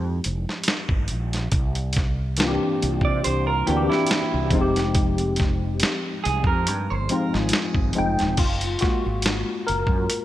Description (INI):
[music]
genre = R&B, neo-soul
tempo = 70 BPM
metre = 4/4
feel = swing 53% on 16ths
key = F dorian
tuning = A4 = 440 Hz
[part]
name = tine electric piano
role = accompaniment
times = 0.0-10.2 s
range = E3 to G5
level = -24 LUFS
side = left 2 dB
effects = ensemble chorus
[part]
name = fretless electric bass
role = bass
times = 0.0-10.1 s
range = Eb1 to C3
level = -26 LUFS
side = equal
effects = analog chorus
[part]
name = dusty soul sampler-style drum kit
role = drums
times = 0.2-10.2 s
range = crash cymbal, hi-hat, kick drum, snare drum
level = -24 LUFS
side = equal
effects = none
[part]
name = electric guitar through a small old amp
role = second line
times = 3.0-8.3 s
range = E4 to D5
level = -27 LUFS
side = right 5 dB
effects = none
[sound]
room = light reverb, digital ambience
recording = bright 1980s-style digital production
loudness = -20 LUFS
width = side -13 dB against mid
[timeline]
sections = 0.0-8.4 A section; 8.4-10.2 B section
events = tine electric piano solo 8.4-10.2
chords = 0.0 Fm9; 1.5 C7; 4.5 Fm9; 8.4 Gbmaj9